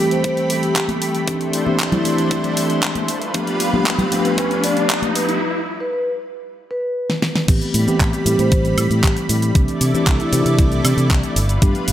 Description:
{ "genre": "nu-disco, nu disco", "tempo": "116 BPM", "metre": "4/4", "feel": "straight", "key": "A minor", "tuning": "A4 = 440 Hz", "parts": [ { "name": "vibraphone with soft mallets", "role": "melody", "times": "0.0-10.6 s", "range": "E4 to D5", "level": "-24 LUFS", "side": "equal", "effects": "tape echo" }, { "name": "mellow tine electric piano", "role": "accompaniment", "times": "0.0-11.9 s", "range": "E3 to G4", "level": "-21 LUFS", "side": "equal", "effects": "slow stereo tremolo, sidechain pumping" }, { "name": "lush unison pad", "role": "sustained chords", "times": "0.0-11.9 s", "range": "G3 to B5", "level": "-25 LUFS", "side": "equal", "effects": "chorus, sidechain pumping" }, { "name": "riser", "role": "sound effects", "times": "2.1-5.4 s", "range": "none", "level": "-26 LUFS", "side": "equal", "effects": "none" }, { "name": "pop drum kit", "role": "drums", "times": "0.1-11.9 s", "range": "crash cymbal, handclaps, hi-hat, shaker, snare drum, woodblock", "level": "-23 LUFS", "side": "equal", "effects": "none" }, { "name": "electronic kick drum", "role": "drums", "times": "0.2-11.7 s", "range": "none", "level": "-17 LUFS", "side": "equal", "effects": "overdrive, high-pass filter on kick, high-pass filter on room" }, { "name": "congas", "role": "percussion", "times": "0.9-5.1 s", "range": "none", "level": "-24 LUFS", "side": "left 2 dB", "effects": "none" }, { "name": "fingered electric bass", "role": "bass", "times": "7.5-11.9 s", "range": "G1 to C3", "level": "-19 LUFS", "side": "equal", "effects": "sidechain pumping" } ], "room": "light reverb, digital ambience", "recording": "none", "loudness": "-16 LUFS", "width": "side -12 dB against mid", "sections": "0.0-7.5 A section; 7.5-11.9 B section", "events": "build-up 0.0-7.5; riser 2.1-5.4; break 5.4-7.5; drum fill 7.1-7.5; drop 7.5-11.9", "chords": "0.0 Am9; 1.3 C69; 3.1 G7; 5.4 N.C.; 7.5 Am9; 9.6 C69; 11.4 G7" }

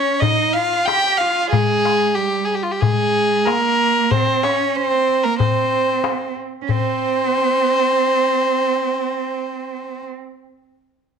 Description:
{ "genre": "Arabic maqam ensemble", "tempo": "93 BPM", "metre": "4/4", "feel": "straight", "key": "C maqam kurd", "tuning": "A4 = 441 Hz", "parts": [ { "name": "rich violin", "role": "melody", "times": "0.0-10.0 s", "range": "F4 to G5", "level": "-18 LUFS", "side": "left 2 dB", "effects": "none" }, { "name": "rich cello", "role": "second line", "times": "0.0-10.1 s", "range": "G3 to G4", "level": "-22 LUFS", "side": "right 12 dB", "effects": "none" }, { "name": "darbuka", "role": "percussion", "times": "0.2-7.0 s", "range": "none", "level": "-21 LUFS", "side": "left 6 dB", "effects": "none" } ], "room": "moderate echo chamber reverb, RT60 1.2 s, studio ambience", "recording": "1960s-style stereo with parts hard left and right", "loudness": "-16 LUFS", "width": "side -6 dB against mid", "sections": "0.0-6.7 A section; 6.7-9.3 B section", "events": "none", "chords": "none" }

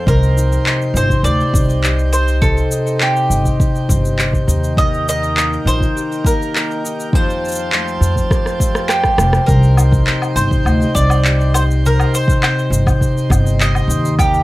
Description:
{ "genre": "folktronica", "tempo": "102 BPM", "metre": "4/4", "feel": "straight", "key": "C dorian", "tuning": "A4 = 440 Hz", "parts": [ { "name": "pedal harmonium", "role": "sustained chords", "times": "0.0-14.4 s", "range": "Eb4 to C6", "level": "-25 LUFS", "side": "right 1 dB", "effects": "none" }, { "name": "concert harp", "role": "arpeggios", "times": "0.0-14.4 s", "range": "F2 to G4", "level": "-20 LUFS", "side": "left 2 dB", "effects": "low-pass filter" }, { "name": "mandolin", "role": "melody", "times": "0.1-14.4 s", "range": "G4 to Eb5", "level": "-20 LUFS", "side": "right 1 dB", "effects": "digital delay" }, { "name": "upright bass", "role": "bass", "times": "0.1-14.4 s", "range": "F1 to F2", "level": "-15 LUFS", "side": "equal", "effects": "none" }, { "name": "electronic kick drum", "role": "drums", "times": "0.1-14.3 s", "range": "none", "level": "-16 LUFS", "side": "equal", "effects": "none" }, { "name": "electronic shaker, handclaps, rim click and woodblock", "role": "drums", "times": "0.1-14.4 s", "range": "none", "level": "-21 LUFS", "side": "left 1 dB", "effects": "none" } ], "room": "light reverb", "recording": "none", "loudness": "-12 LUFS", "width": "side -17 dB against mid", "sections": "0.0-9.5 A section; 9.5-14.4 A section", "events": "filter sweep on harp 0.0-9.5, 9.5-14.4; drum fill 8.3-9.5", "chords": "0.1 Cm; 4.8 Eb; 7.1 Fadd9; 9.5 Cm" }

